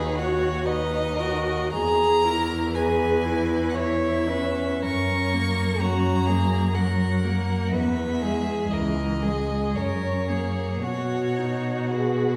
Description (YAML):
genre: classical, slow romantic movement for string quartet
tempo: 54-64 BPM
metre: 3/4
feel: rubato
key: B major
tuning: A4 = 439 Hz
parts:
  - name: clear violin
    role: melody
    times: 0.0-12.4 s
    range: B4 to C#6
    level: -32 LUFS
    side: equal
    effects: none
  - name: rich violin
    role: second line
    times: 0.0-12.4 s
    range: F#4 to C#5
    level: -32 LUFS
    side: equal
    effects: none
  - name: rich viola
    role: accompaniment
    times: 0.0-12.4 s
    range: E3 to G#4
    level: -29 LUFS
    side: equal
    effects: none
  - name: rich cello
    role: bass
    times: 0.0-12.4 s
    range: C#2 to B2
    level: -28 LUFS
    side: equal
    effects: none
room: wet recital hall reverb, RT60 1.4 s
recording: heard from further back in the room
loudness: -24 LUFS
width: mono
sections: 0.0-12.4 A section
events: none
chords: 0.0 B/D#; 1.7 E; 3.8 C#m/E; 4.8 F#; 7.7 E; 8.7 C#m; 9.8 F#; 10.8 B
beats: 0.67 | 1.73 2.75 3.75 | 4.83 5.81 6.75 | 7.72 8.71 9.75 | 10.83 11.92